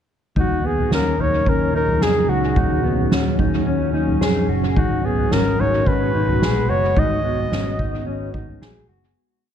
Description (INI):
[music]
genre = dream pop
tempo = 109 BPM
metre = 4/4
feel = straight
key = Eb minor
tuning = A4 = 439 Hz
[part]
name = warm flugelhorn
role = melody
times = 0.4-8.1 s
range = Gb4 to Eb5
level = -22 LUFS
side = right 1 dB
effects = analog delay
[part]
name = warbly tape-like pad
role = sustained chords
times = 0.8-9.1 s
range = Bb2 to Gb4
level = -24 LUFS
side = right 2 dB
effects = chorus, built-in reverb
[part]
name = mellow electric guitar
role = arpeggios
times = 0.4-9.2 s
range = Cb4 to Ab4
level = -24 LUFS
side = left 5 dB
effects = wide subtle chorus, analog delay
[part]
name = vintage muted picked electric bass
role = bass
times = 0.4-9.1 s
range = Gb1 to F2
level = -24 LUFS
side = equal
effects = none
[part]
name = soft-mallet drum kit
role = drums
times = 0.4-8.7 s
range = kick drum, snare drum, toms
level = -23 LUFS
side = equal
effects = analog delay
[sound]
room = light reverb, studio ambience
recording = echo-heavy mix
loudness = -17 LUFS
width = side -9 dB against mid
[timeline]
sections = 0.4-9.2 verse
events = fade-out 7.0-9.2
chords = 0.4 Ebm7; 4.8 Abm9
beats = | 0.36 0.91 1.46 2.01 | 2.56 3.11 3.66 4.21 | 4.76 5.31 5.86 6.42 | 6.96 7.52 8.07 8.62